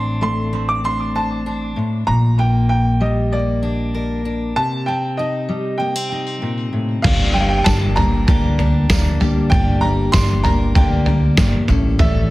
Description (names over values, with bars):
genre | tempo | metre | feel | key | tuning
indie folk with a building arrangement | 97 BPM | 4/4 | straight | G minor | A4 = 440 Hz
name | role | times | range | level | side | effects
clear upright piano | melody | 0.0-12.3 s | D5 to D6 | -23 LUFS | right 1 dB | tape echo
fingerpicked steel-string acoustic guitar | accompaniment | 0.0-12.3 s | G2 to C5 | -22 LUFS | left 1 dB | tape echo
upright bass | bass | 0.0-12.3 s | G1 to D2 | -19 LUFS | equal | none
picked steel-string acoustic guitar | accompaniment | 7.0-12.3 s | G2 to A4 | -25 LUFS | left 4 dB | none
trip hop sampler-style drum kit | drums | 7.0-12.1 s | crash cymbal, kick drum, snare drum, toms | -17 LUFS | equal | none
tambourine | percussion | 7.7-11.5 s | none | -34 LUFS | right 6 dB | tape echo
room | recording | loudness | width
light reverb, studio reverb | echo-heavy mix | -15 LUFS | side -18 dB against mid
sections
0.0-7.0 A section; 7.0-12.3 B section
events
break 4.6-7.0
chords
0.0 Amadd11; 2.1 Gm/Bb; 4.6 Cm; 7.0 Gm; 11.7 A7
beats
0.22 0.84 1.46 | 2.08 2.70 3.32 3.94 | 4.56 5.18 5.80 6.42 | 7.04 7.66 8.28 8.90 | 9.52 10.14 10.76 11.38 | 12.00